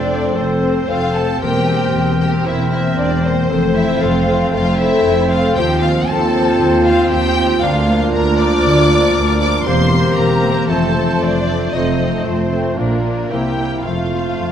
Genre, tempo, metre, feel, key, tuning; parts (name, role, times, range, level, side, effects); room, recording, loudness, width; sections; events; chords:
classical, dramatic, fast romantic movement for symphony orchestra; 116 BPM; 4/4; rubato; F major; A4 = 439 Hz
rich studio violin section; melody; 0.0-14.5 s; Bb4 to D6; -22 LUFS; left 2 dB
mellow clarinet; second line; 0.0-14.5 s; E4 to Bb4; -23 LUFS; equal
warm cor anglais; second line; 0.0-14.5 s; Bb4 to D5; -26 LUFS; right 1 dB
warm symphonic violin section; second line; 0.0-14.5 s; Bb3 to D5; -24 LUFS; left 2 dB
mellow bassoon; accompaniment; 0.0-14.5 s; A3 to D4; -24 LUFS; right 2 dB
warm studio viola section; accompaniment; 0.0-14.5 s; F3 to F4; -23 LUFS; right 2 dB
mellow French horn section; sustained chords; 0.0-14.5 s; A3 to Bb4; -22 LUFS; left 1 dB
concert harp; arpeggios; 0.0-14.5 s; Bb2 to D5; -23 LUFS; left 7 dB
dark symphonic double bass section; bass; 0.0-14.5 s; E1 to Eb2; -22 LUFS; right 2 dB
warm symphonic cello section; bass; 0.0-14.5 s; D2 to C3; -22 LUFS; right 2 dB
wet scoring stage reverb, RT60 1.5 s; -13 LUFS; side -9 dB against mid
0.0-14.5 A section
0.0 F; 1.4 C7/E; 3.5 F; 5.6 F7/Eb; 7.6 Bb/D; 9.7 C7/E; 10.7 F; 12.8 Bb; 13.3 C7; 13.9 F